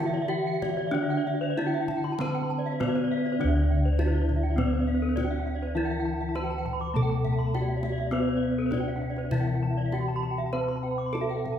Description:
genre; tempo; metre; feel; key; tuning
Balinese gamelan; 101 BPM; 4/4; straight; D slendro; A4 = 438 Hz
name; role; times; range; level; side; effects
gamelan-type bronze metallophone; melody; 0.0-11.6 s; C4-45c to C5-45c; -31 LUFS; equal; none
gamelan-type bronze metallophone; accompaniment; 0.0-11.6 s; D3 to C4-45c; -35 LUFS; left 2 dB; none
gamelan-type bronze metallophone; arpeggios; 0.0-11.6 s; C5-45c to D6; -35 LUFS; right 5 dB; none
gamelan-type bossed gongs; bass; 0.0-11.6 s; D2 to C5-45c; -28 LUFS; left 1 dB; none
gamelan-type bronze metallophone; arpeggios; 0.1-11.5 s; A4+25c to D6; -35 LUFS; left 5 dB; none
kendang; percussion; 0.1-11.6 s; none; -37 LUFS; right 4 dB; none
room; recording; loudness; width
wet recital hall reverb, RT60 1.4 s; recorded in a church or concert hall; -25 LUFS; side -9 dB against mid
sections
0.0-3.4 A section; 3.4-11.6 B section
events
none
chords
none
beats
0.29 | 0.94 1.57 2.19 2.80 | 3.40 3.99 4.58 5.17 | 5.76 6.35 6.95 7.54 | 8.13 8.72 9.32 9.92 | 10.52 11.13

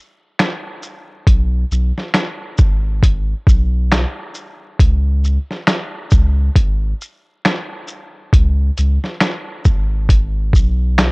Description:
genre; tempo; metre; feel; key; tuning
lo-fi hip hop; 68 BPM; 4/4; swing 55% on 16ths; unclear; A4 = 439 Hz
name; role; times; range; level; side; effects
lo-fi sampler-style drum kit; drums; 0.4-11.1 s; finger snaps, hi-hat, kick drum, shaker, snare drum; -14 LUFS; equal; none
soft dub sub bass; bass; 1.3-11.1 s; G#1 to C#2; -16 LUFS; equal; none
room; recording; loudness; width
little or no reverb; dark, warm production; -14 LUFS; side -29 dB against mid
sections
0.0-11.1 A section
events
none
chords
none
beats
0.39 | 1.27 2.15 3.03 3.92 | 4.80 5.68 6.56 7.45 | 8.33 9.21 10.09 10.98

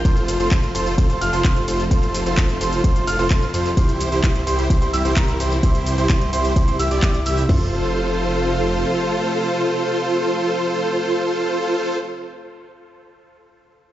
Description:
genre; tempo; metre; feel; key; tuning
EDM, festival progressive house; 129 BPM; 4/4; straight; F major; A4 = 440 Hz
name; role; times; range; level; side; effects
clear studio string section; sustained chords; 0.0-12.0 s; C3 to F4; -29 LUFS; equal; sidechain pumping
dense compressed supersaw; riff; 0.0-12.0 s; E4 to F5; -21 LUFS; equal; sidechain pumping, dub echo
wide detuned saw bass; bass; 0.0-8.8 s; F1 to F2; -24 LUFS; equal; chorus, sidechain pumping
warm concert grand piano; arpeggios; 0.1-12.1 s; Bb5 to F6; -27 LUFS; right 3 dB; sidechain pumping, dub echo
house drum kit; drums; 0.1-7.6 s; crash cymbal, kick drum, toms; -17 LUFS; equal; small room ambience
pop drum kit; drums; 0.1-7.5 s; handclaps, hi-hat, ride cymbal, shaker; -29 LUFS; equal; small room ambience
room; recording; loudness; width
light reverb; played on a big sound system in a bare room, stone room reverb, nothing above 7.7 kHz; -17 LUFS; side -13 dB against mid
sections
0.0-7.5 A section; 7.5-11.2 B section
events
drop 0.0-7.5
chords
0.1 F; 3.8 C; 7.5 F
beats
| 0.05 0.52 0.98 1.45 | 1.91 2.38 2.84 3.31 | 3.77 4.24 4.70 5.17 | 5.63 6.10 6.56 7.03 | 7.49 7.96 8.42 8.89 | 9.35 9.82 10.28 10.75

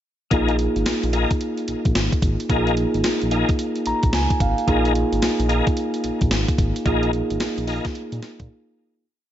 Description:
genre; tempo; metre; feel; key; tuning
R&B, new jack swing; 110 BPM; 4/4; swing 64% on 16ths; unclear; A4 = 440 Hz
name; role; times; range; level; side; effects
mellow tine electric piano; accompaniment; 0.3-9.1 s; Bb3 to Bb5; -23 LUFS; right 1 dB; none
tonewheel organ; stabs; 0.3-7.9 s; Eb4 to Bb4; -27 LUFS; left 4 dB; chorus vibrato, fast rotary speaker, tape echo
smooth synth bass; bass; 0.3-8.5 s; Ab1 to Bb2; -24 LUFS; equal; none
gated 80s digital drum machine; drums; 0.3-8.5 s; hi-hat, kick drum, snare drum; -23 LUFS; equal; gated reverb, gated reverb snare
room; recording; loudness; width
little or no reverb; nothing above 7.7 kHz; -18 LUFS; side -11 dB against mid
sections
0.3-9.0 verse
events
tine electric piano fill 3.6-4.7; fade-out 6.9-9.0; break 8.5-9.0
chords
0.3 Bb7sus4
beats
| 0.31 0.86 1.40 1.95 | 2.50 3.04 3.59 4.13 | 4.68 5.22 5.77 6.31 | 6.86 7.40 7.95 8.49

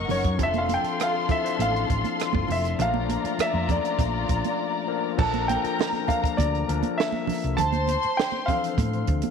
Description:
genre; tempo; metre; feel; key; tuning
lush 1970s-style soul; 100 BPM; 4/4; straight; unclear; A4 = 440 Hz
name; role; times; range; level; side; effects
warm concert grand piano; melody; 0.0-9.3 s; C#5 to A5; -28 LUFS; right 1 dB; none
dark studio string section; second line; 0.0-9.1 s; F4 to C#6; -29 LUFS; left 4 dB; slapback echo
hollow-body short-scale fingered electric bass; bass; 0.0-9.2 s; F1 to A2; -28 LUFS; equal; none
overdriven tine electric piano; accompaniment; 0.1-9.3 s; E3 to C5; -30 LUFS; left 13 dB; none
compact cocktail drum kit; drums; 0.1-9.3 s; crash cymbal, hi-hat, kick drum, rim click, snare drum; -28 LUFS; right 3 dB; none
congas; percussion; 0.1-9.3 s; none; -32 LUFS; right 12 dB; none
room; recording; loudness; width
light reverb, small room ambience; 1960s-style stereo with parts hard left and right; -22 LUFS; side -6 dB against mid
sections
0.0-5.2 A section; 5.2-9.3 B section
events
break 4.6-5.2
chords
0.4 F6; 2.8 Bbmaj7; 7.6 Dm7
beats
| 0.39 0.99 1.59 2.19 | 2.79 3.39 3.99 4.59 | 5.19 5.79 6.39 6.99 | 7.59 8.19 8.79

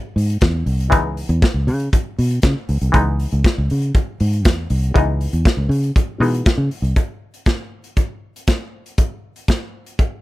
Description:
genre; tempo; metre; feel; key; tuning
disco; 119 BPM; 4/4; straight; C# minor; A4 = 440 Hz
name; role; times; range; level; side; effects
muted clav; accompaniment; 0.0-7.0 s; E3 to D#4; -20 LUFS; left 2 dB; phaser
fingered electric bass; bass; 0.2-6.9 s; B#1 to C#3; -18 LUFS; equal; none
modern studio drum kit; drums; 0.2-10.1 s; hi-hat, kick drum, snare drum; -16 LUFS; equal; none
room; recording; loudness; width
little or no reverb; none; -16 LUFS; side -18 dB against mid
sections
0.0-7.0 A section; 7.0-10.2 B section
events
none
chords
0.0 C#m7; 7.0 N.C.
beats
0.42 | 0.92 1.43 1.93 2.43 | 2.94 3.44 3.94 4.45 | 4.95 5.45 5.96 6.46 | 6.96 7.47 7.97 8.48 | 8.98 9.48 9.99

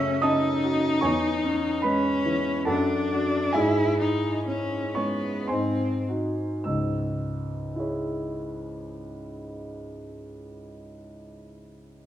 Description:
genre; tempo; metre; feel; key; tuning
classical, romantic duo for cello and grand piano; 48-77 BPM; 3/4; rubato; C# minor; A4 = 440 Hz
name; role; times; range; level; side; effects
rich cello; melody; 0.0-6.1 s; B3 to E4; -26 LUFS; left 2 dB; none
warm grand piano; accompaniment; 0.0-12.1 s; C#2 to F#6; -26 LUFS; right 1 dB; none
room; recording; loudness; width
wet recital hall reverb, RT60 1.3 s; minimal, uncompressed stereo recording; -23 LUFS; side -11 dB against mid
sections
0.0-6.7 A section; 6.7-9.9 B section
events
slowing down 0.0-6.7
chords
0.0 F#m; 1.0 C#m/E; 2.7 D/F#; 3.5 C#m/G#; 5.5 G#7; 6.7 C#m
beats
0.23 | 1.02 1.84 2.68 | 3.54 4.46 5.48 | 6.65 7.74 8.83

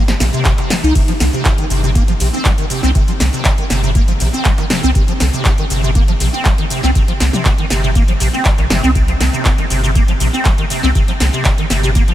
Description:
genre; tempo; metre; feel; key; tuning
acid house; 120 BPM; 4/4; straight; C minor; A4 = 439 Hz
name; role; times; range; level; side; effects
liquid acid bass; riff; 0.0-12.1 s; C3 to Eb4; -18 LUFS; equal; tube saturation, ensemble chorus, sidechain pumping, analog delay
warm sub bass; bass; 0.0-12.1 s; G1 to C2; -16 LUFS; equal; sidechain pumping
electro analog drum machine; drums; 0.1-12.1 s; crash cymbal, handclaps, hi-hat, ride cymbal, shaker, snare drum, toms; -19 LUFS; equal; small room ambience
electronic kick drum; drums; 0.5-12.1 s; none; -15 LUFS; equal; small room ambience
room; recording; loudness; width
light reverb; none; -12 LUFS; side -13 dB against mid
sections
0.0-12.1 A section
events
none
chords
0.0 C5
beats
0.45 | 0.95 1.45 1.95 2.45 | 2.95 3.45 3.95 4.45 | 4.95 5.45 5.95 6.45 | 6.95 7.45 7.95 8.45 | 8.95 9.45 9.95 10.45 | 10.95 11.45 11.95

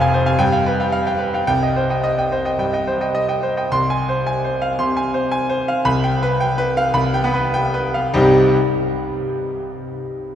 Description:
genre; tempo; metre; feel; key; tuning
classical, virtuoso piano study; 108 BPM; 4/4; uneven beats, rubato; C minor; A4 = 440 Hz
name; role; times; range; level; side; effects
bright grand piano; solo; 0.0-8.6 s; F1 to C6; -16 LUFS; equal; none
room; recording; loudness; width
wet cathedral reverb, RT60 5.8 s; recorded in a church or concert hall; -16 LUFS; side -10 dB against mid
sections
0.0-3.7 A section; 3.7-8.1 B section; 8.1-10.3 C section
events
slowing down 2.6-8.1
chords
0.4 G7; 1.5 Cm; 3.7 Fm/C; 5.9 G7/C; 8.1 Cm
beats
0.40 0.93 | 1.49 2.05 2.62 3.18 | 3.73 4.28 4.80 5.34 | 5.87 6.40 6.95 7.53 | 8.13

